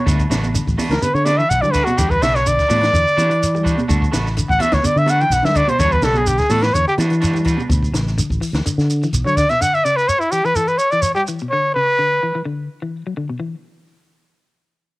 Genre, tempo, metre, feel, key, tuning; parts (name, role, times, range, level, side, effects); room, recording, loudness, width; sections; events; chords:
afrobeat; 126 BPM; 4/4; straight; A4 = 439 Hz
breathy trumpet; melody; 0.0-12.4 s; E4 to G5; -16 LUFS; equal; cassette tape
semi-hollow electric guitar; arpeggios; 0.0-13.5 s; B2 to G3; -26 LUFS; left 3 dB; cassette tape
electric guitar at the edge of break-up; stabs; 0.1-7.6 s; G3 to B4; -28 LUFS; right 3 dB; spring reverb, cassette tape
fingered electric bass; bass; 0.1-9.4 s; A1 to E3; -19 LUFS; equal
compact cocktail drum kit; drums; 0.1-9.6 s; hi-hat, kick drum, snare drum; -23 LUFS; equal
congas; percussion; 0.1-7.7 s; -26 LUFS; right 3 dB
shekere; percussion; 0.1-11.5 s; -25 LUFS; right 1 dB
small room ambience; home recording on cassette; -15 LUFS; side -20 dB against mid
0.0-13.4 A section; 13.4-15.0 B section
trumpet solo 0.0-13.4
0.1 D6; 2.0 Em9; 3.9 D6; 5.8 Em9; 7.7 D5; 9.6 N.C.; 11.5 D5; 13.4 N.C.